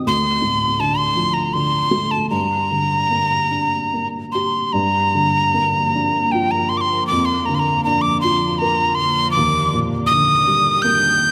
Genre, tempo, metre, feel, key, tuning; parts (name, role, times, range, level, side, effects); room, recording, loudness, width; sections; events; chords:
celtic folk, Celtic slow air; 70-82 BPM; 3/4; rubato; G minor; A4 = 437 Hz
felt-muted upright piano; accompaniment; 0.0-11.3 s; D2 to Bb4; -24 LUFS; equal
breathy mid whistle; melody; 0.1-11.3 s; G5 to G6; -19 LUFS; equal
ethereal airy pad; sustained chords; 5.3-11.3 s; Eb2 to Bb3; -29 LUFS; equal; ensemble chorus, built-in reverb, phaser
wet church reverb, RT60 3.4 s; -18 LUFS; mono
0.0-4.7 A section; 4.7-11.3 B section
0.1 Dm7; 2.3 Gm; 4.7 Gm7; 7.1 Bb/F; 9.4 Ebmaj7